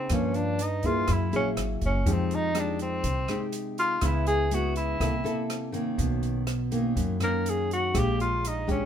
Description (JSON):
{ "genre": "bossa nova", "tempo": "122 BPM", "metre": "4/4", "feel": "straight", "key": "unclear", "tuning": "A4 = 439 Hz", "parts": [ { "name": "breathy tenor saxophone", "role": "melody", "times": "0.0-8.9 s", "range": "C4 to A#4", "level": "-28 LUFS", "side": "equal", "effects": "none" }, { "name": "nylon-string guitar", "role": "accompaniment", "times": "0.0-8.9 s", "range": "F#2 to A4", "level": "-29 LUFS", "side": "left 1 dB", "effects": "none" }, { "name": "upright bass", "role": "bass", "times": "0.1-8.9 s", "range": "Gb1 to G2", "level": "-30 LUFS", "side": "equal", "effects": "none" }, { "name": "open jazz drum kit", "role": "drums", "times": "0.1-8.8 s", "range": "hi-hat, kick drum, rim click", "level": "-33 LUFS", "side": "equal", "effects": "none" } ], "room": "moderate studio reverb, RT60 0.7 s", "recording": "band playing live in one room", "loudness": "-24 LUFS", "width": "side -9 dB against mid", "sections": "0.0-8.9 A section", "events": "tenor saxophone solo 0.0-8.9", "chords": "0.1 Gm7b5; 1.1 Gb9; 2.1 Fm9; 4.0 Dbm7; 5.0 C6; 6.0 Bmaj9; 7.9 Bb6", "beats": "| 0.10 0.59 1.08 1.57 | 2.06 2.55 3.04 3.53 | 4.02 4.51 5.00 5.49 | 5.98 6.47 6.96 7.45 | 7.95 8.44" }